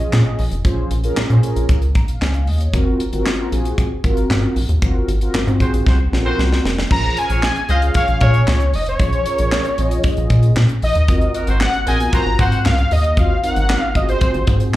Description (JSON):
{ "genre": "early-eighties boogie funk", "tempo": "115 BPM", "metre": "4/4", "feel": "straight", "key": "Bb minor", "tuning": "A4 = 440 Hz", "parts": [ { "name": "mellow synth brass", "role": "accompaniment", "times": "0.0-14.7 s", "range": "Bb3 to Bb5", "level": "-24 LUFS", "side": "equal", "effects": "chorus, slapback echo" }, { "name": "rubbery square bass", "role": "bass", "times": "0.0-14.8 s", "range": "F1 to Bb2", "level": "-17 LUFS", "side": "equal", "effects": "none" }, { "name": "tight funk drum kit", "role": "drums", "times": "0.0-14.8 s", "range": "crash cymbal, handclaps, hi-hat, kick drum, snare drum", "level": "-20 LUFS", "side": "equal", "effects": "none" }, { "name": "bright horn section", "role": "second line", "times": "5.6-12.6 s", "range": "Bb3 to Eb5", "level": "-25 LUFS", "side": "equal", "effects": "slapback echo" }, { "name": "fat analog lead", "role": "melody", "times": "6.9-14.6 s", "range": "C5 to Bb5", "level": "-20 LUFS", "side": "equal", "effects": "slapback echo, tape echo" } ], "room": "light reverb", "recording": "live gig heard through the venue's PA, club reverb", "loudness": "-14 LUFS", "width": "side -15 dB against mid", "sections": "0.0-6.9 A section; 6.9-14.8 B section", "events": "band accent 4.8-6.9; drum fill 5.9-6.9", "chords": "0.0 Bbm7; 2.7 Ab13; 6.9 Bbm7; 11.1 Ab13" }